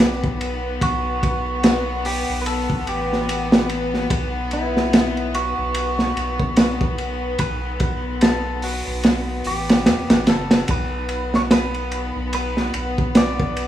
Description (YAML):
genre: trip hop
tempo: 73 BPM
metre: 4/4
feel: swing 59% on 16ths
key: unclear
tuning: A4 = 440 Hz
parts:
  - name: clean electric guitar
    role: melody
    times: 0.0-13.7 s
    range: E4 to D5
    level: -27 LUFS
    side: right 2 dB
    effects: dub echo
  - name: warm studio string section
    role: sustained chords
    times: 0.0-13.7 s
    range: B3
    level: -26 LUFS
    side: left 3 dB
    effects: none
  - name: round analog bass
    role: bass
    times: 0.0-13.7 s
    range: F#1 to E2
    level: -28 LUFS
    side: equal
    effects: none
  - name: crunchy breakbeat drum kit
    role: drums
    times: 0.0-13.7 s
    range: hi-hat, kick drum, ride cymbal, snare drum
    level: -19 LUFS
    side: right 1 dB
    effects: none
room: little or no reverb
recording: rough home demo mix, small room ambience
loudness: -18 LUFS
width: side -12 dB against mid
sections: 0.0-13.7 A section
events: none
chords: 0.0 Gmaj9; 4.1 B5; 10.7 N.C.